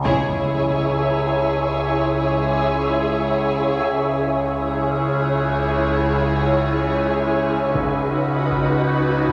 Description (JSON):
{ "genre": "cinematic, suspense film score", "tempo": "78 BPM", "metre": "5/4", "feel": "straight", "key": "C# minor", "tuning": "A4 = 440 Hz", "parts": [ { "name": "dark studio violin section", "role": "melody", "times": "0.0-9.3 s", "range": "B4 to C#5", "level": "-29 LUFS", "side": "equal", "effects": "none" }, { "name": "flickering grainy texture", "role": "sustained chords", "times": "0.4-9.3 s", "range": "F#4 to E5", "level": "-25 LUFS", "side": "equal", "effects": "built-in reverb" }, { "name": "warm symphonic violin section", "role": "second line", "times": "0.1-9.3 s", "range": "F#4 to G#4", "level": "-32 LUFS", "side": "equal", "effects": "none" }, { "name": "dark symphonic viola section", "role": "accompaniment", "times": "0.1-9.3 s", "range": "D#4 to E4", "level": "-30 LUFS", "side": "equal", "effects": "none" }, { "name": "rich symphonic cello section", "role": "bass", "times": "0.1-9.3 s", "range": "C#3", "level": "-30 LUFS", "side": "equal", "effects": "none" }, { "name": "rich symphonic double bass section", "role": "bass", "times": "0.1-9.3 s", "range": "C#2", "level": "-32 LUFS", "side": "equal", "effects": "none" }, { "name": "overtone-sweeping drone", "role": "drone", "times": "0.1-9.3 s", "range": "C#2", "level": "-26 LUFS", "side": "equal", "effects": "chorus, built-in reverb, phaser" }, { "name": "taiko ensemble", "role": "drums", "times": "0.1-1.6, 7.7-9.3 s", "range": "none", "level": "-34 LUFS", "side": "equal", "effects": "none" }, { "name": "impact", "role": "sound effects", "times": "0.1-3.9 s", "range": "none", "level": "-33 LUFS", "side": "equal", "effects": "none" } ], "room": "wet concert hall reverb, RT60 2.2 s", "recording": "none", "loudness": "-20 LUFS", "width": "mono", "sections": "0.1-9.3 A section", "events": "band accent 0.1-0.8; impact 0.1-3.9", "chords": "0.1 C#m; 7.7 Badd9/C#" }